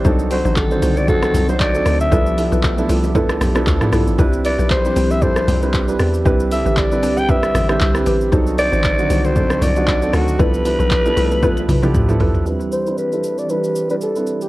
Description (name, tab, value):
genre	amapiano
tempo	116 BPM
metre	4/4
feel	swing 55% on 16ths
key	C major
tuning	A4 = 438 Hz
part	dark grand piano	accompaniment	0.0-14.5 s	F3 to D5	-21 LUFS	right 3 dB	low-pass filter
part	hollow soft pad	sustained chords	0.0-14.5 s	D3 to G4	-26 LUFS	left 1 dB	chorus, low-pass filter
part	mallet-like synth pluck	stabs	0.0-12.4 s	C4 to C5	-25 LUFS	left 1 dB	chorus, phaser, ping-pong delay
part	hollow log drum bass	bass	0.0-12.4 s	A1 to E2	-19 LUFS	equal	none
part	smooth R&B drum kit	drums	0.0-14.5 s	handclaps, hi-hat, kick drum, rim click, shaker, toms	-20 LUFS	equal	overdrive
part	congas and bongos	percussion	0.1-12.1 s	none	-27 LUFS	equal	none
part	breathy alto saxophone	melody	0.3-14.5 s	F#4 to G5	-20 LUFS	left 1 dB	low-pass filter, ping-pong delay
room	digital ambience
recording	worn, warbling old tape, cassette tape, warbly pitch drift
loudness	-14 LUFS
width	side -18 dB against mid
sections	0.0-12.5 A section; 12.5-14.5 B section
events	drop 0.0-12.5; drum fill 11.4-12.5; filter sweep 12.5-14.5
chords	0.1 D7b9; 2.1 G13; 4.2 Cmaj7; 6.3 Am11; 8.3 D7b9; 10.4 G13; 12.5 Cmaj7